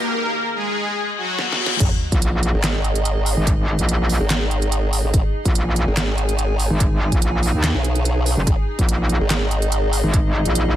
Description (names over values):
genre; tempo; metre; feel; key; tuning
heavy wobble dubstep; 144 BPM; 4/4; half-time; unclear; A4 = 436 Hz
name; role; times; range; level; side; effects
soft supersaw; melody; 0.0-1.7 s; F#3 to A#4; -22 LUFS; left 1 dB; phaser, ping-pong delay
evolving wavetable pad; sustained chords; 0.0-10.8 s; D#4 to G#5; -28 LUFS; right 1 dB; chorus, built-in reverb, sidechain pumping
riser, reverse cymbal and sub drop; sound effects; 0.0-3.5 s; none; -26 LUFS; left 3 dB; none
dubstep drum kit; drums; 1.4-10.6 s; crash cymbal, handclaps, hi-hat, snare drum; -24 LUFS; right 1 dB; studio reverb
formant-sweep wobble bass; bass; 1.8-10.0 s; G#1 to B1; -20 LUFS; equal; chorus, overdrive
electronic kick drum; drums; 1.8-10.2 s; none; -19 LUFS; equal; studio reverb
metallic wobble bass; bass; 2.1-10.8 s; F#1 to D#2; -18 LUFS; equal; distortion, chorus, overdrive
room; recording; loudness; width
little or no reverb; high-pass filter; -17 LUFS; side -12 dB against mid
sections
0.0-1.8 A section; 1.8-10.8 B section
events
build-up 0.0-1.8; filter sweep on ambient pad 0.0-1.8; filter sweep 0.0-1.8; reverse cymbal 1.1-1.8; drum fill 1.4-1.8; drop 1.8-10.8; impact 1.8-3.5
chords
0.0 G#5